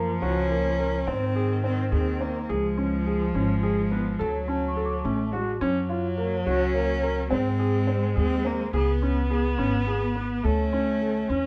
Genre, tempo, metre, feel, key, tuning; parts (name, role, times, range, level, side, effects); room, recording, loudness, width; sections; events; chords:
contemporary instrumental, chamber music in an uneven meter; 211 BPM (eighths); 11/8; straight; A4 = 435 Hz
dark viola; second line; 0.0-11.5 s; D#3 to C#4; -32 LUFS; equal
warm concert grand piano; arpeggios; 0.0-11.5 s; A#3 to A#4; -31 LUFS; equal
upright bass; bass; 0.0-11.5 s; G#1 to G#2; -30 LUFS; equal
large celesta; texture; 0.0-6.2 s; A5 to D6; -39 LUFS; equal
clear cello; melody; 0.2-11.5 s; F#3 to C#4; -32 LUFS; equal
light reverb; -25 LUFS; mono
0.0-11.5 A section
0.0 F#maj7; 1.1 G#; 2.5 C#; 4.2 Dmaj7; 5.6 F#; 7.3 G#; 8.7 C#5; 10.4 Dmaj7(no3)